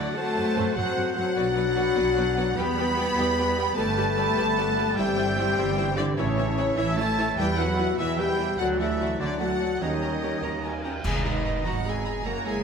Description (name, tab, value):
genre	cinematic, heroic adventure film score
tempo	99 BPM (dotted quarters)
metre	12/8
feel	straight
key	E minor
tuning	A4 = 440 Hz
part	rich studio violin section	melody	0.0-12.6 s	C#5 to B5	-32 LUFS	left 2 dB	none
part	clear clarinet	second line	0.0-12.6 s	B4 to D#5	-38 LUFS	equal	none
part	clear oboe	second line	0.0-12.6 s	E5 to A#5	-38 LUFS	right 3 dB	none
part	clear studio violin section	second line	0.0-12.5 s	A#4 to B5	-38 LUFS	equal	none
part	mellow large flute ensemble	second line	0.0-12.6 s	D#5 to B5	-37 LUFS	right 4 dB	none
part	clear symphonic viola section	accompaniment	0.0-12.6 s	C3 to A#4	-34 LUFS	equal	none
part	clear trombone section	sustained chords	0.0-12.6 s	B2 to D4	-34 LUFS	right 3 dB	none
part	dark French horn section	sustained chords	0.0-12.6 s	C#4 to B4	-29 LUFS	left 6 dB	none
part	warm trumpet section	stabs	0.0-12.6 s	B3 to B5	-33 LUFS	right 2 dB	none
part	clear symphonic cello section	bass	0.0-12.6 s	C#3 to B3	-31 LUFS	equal	none
part	clear symphonic double bass section	bass	0.0-12.6 s	F#1 to F#2	-31 LUFS	right 4 dB	none
part	cymbal swell, clash cymbals and concert bass drum	percussion	8.6-11.8 s	none	-32 LUFS	equal	none
room	wet scoring stage reverb, RT60 1.7 s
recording	none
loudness	-22 LUFS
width	side -6 dB against mid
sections	0.0-11.0 A section; 11.0-12.6 B section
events	band accent 11.0-11.4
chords	0.2 F#dim; 1.4 Bm; 2.6 Em; 3.8 G; 5.0 C/G; 6.2 A; 7.4 Em; 8.6 D; 9.8 D#7; 11.0 G#madd9